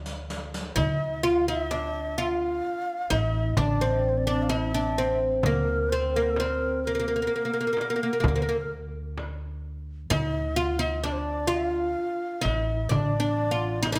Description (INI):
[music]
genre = Arabic maqam ensemble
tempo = 128 BPM (eighths)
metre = 10/8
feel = straight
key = D maqam bayati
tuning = A4 = 440 Hz
[part]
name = upright bass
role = bass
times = 0.0-14.0 s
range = A1 to D2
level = -33 LUFS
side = equal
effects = none
[part]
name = darbuka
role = percussion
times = 0.1-14.0 s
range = none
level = -36 LUFS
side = equal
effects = none
[part]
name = riq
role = percussion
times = 0.1-0.8 s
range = none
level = -39 LUFS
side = equal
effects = none
[part]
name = oud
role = melody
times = 0.8-14.0 s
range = Bb3 to F4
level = -29 LUFS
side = equal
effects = none
[part]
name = breathy bright low ney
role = second line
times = 0.8-14.0 s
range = A4 to F5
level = -35 LUFS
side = equal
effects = none
[part]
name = frame drum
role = percussion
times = 0.8-14.0 s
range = none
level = -34 LUFS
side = equal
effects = none
[sound]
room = moderate recital hall reverb, RT60 1.4 s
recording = none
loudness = -27 LUFS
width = mono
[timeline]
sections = 0.8-14.0 A section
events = drum fill 0.0-0.8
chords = none